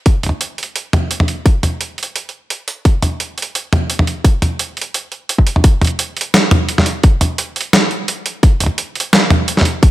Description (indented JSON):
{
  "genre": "drum and bass",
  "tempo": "172 BPM",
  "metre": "4/4",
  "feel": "swing 54% on 16ths, half-time",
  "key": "none",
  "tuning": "none",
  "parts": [
    { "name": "boom bap sampler-style drum kit", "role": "drums", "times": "0.1-9.9 s", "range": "hi-hat, snare drum, toms", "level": "-14 LUFS", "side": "equal", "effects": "none" },
    { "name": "electronic kick drum", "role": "drums", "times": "0.1-9.9 s", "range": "none", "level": "-10 LUFS", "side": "equal", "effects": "overdrive" }
  ],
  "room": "light reverb, digital ambience",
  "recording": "none",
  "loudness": "-13 LUFS",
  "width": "side -15 dB against mid",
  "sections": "0.0-5.6 A section; 5.6-9.9 B section",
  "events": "drop 5.6-9.9",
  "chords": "none",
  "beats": "| 0.06 0.41 0.76 1.11 | 1.46 1.80 2.15 2.50 | 2.85 3.20 3.55 3.90 | 4.25 4.59 4.94 5.29 | 5.64 5.99 6.34 6.69 | 7.04 7.38 7.73 8.08 | 8.43 8.78 9.13 9.48 | 9.83"
}